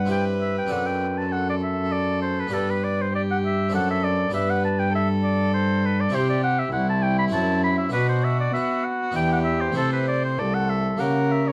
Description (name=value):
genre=classical, baroque-style sonata movement with continuo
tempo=99 BPM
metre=3/4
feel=straight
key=G major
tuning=A4 = 440 Hz
part: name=rich violin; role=melody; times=0.0-11.5 s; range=E4 to C5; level=-31 LUFS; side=equal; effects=none
part: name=clear oboe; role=second line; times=0.0-11.5 s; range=A4 to B5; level=-28 LUFS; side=equal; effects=none
part: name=harpsichord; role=accompaniment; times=0.0-11.5 s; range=C2 to A4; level=-33 LUFS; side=equal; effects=none
part: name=warm cello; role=bass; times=0.0-11.5 s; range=C2 to B3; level=-26 LUFS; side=equal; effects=none
room=light reverb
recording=worn, warbling old tape, cassette tape, warbly pitch drift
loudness=-23 LUFS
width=mono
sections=0.0-11.5 A section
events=none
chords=0.1 C/G; 0.7 D7/F#; 2.5 G; 3.7 D7/F#; 4.3 G; 6.1 C; 7.3 F#m7b5; 7.9 Bm; 9.2 Em7; 9.8 Am/C; 11.0 C#dim7